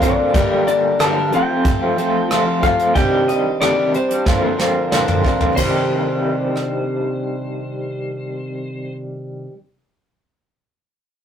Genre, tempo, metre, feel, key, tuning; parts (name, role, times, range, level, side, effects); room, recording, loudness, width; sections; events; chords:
folk rock and heartland rock; 92 BPM; 4/4; straight; C dorian; A4 = 440 Hz
clean lap steel guitar; melody; 0.0-9.0 s; C5 to A5; -22 LUFS; left 2 dB
picked plugged-in twelve-string acoustic guitar; accompaniment; 0.0-9.6 s; G2 to Bb4; -23 LUFS; left 1 dB
electric guitar through a small old amp; riff; 0.0-9.5 s; F2 to G4; -20 LUFS; equal; tremolo
soft brush drum kit; drums; 0.0-6.7 s; hi-hat, kick drum, ride cymbal, rim click, snare drum, toms; -20 LUFS; right 1 dB
moderate studio reverb, RT60 0.6 s; rough rehearsal-room recording, tube saturation; -16 LUFS; side -8 dB against mid
0.0-5.6 A section; 5.6-8.2 B section
drum fill 4.3-5.6
0.3 Gm; 1.3 F; 3.0 Cmadd9; 4.3 Bbadd9; 5.6 Cmadd9